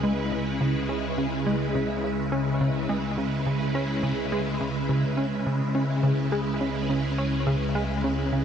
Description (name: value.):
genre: ambient, sequencer-driven space music.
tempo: 105 BPM.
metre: 4/4.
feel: straight.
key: C# minor.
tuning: A4 = 436 Hz.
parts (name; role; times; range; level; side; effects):
phased string machine; sustained chords; 0.0-8.4 s; C#3 to B4; -26 LUFS; equal; ensemble chorus, phaser.
plucky analog bass; riff; 0.0-8.4 s; C#3 to C#4; -28 LUFS; equal; analog chorus, ping-pong delay.
analog drone; bass; 0.0-8.4 s; C#2; -35 LUFS; equal; chorus, phaser.
room: wet lush hall reverb, RT60 2.8 s.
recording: dreamy mix soaked in reverb.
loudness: -24 LUFS.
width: side -8 dB against mid.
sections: 0.0-8.4 A section.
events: none.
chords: 0.0 C#m7.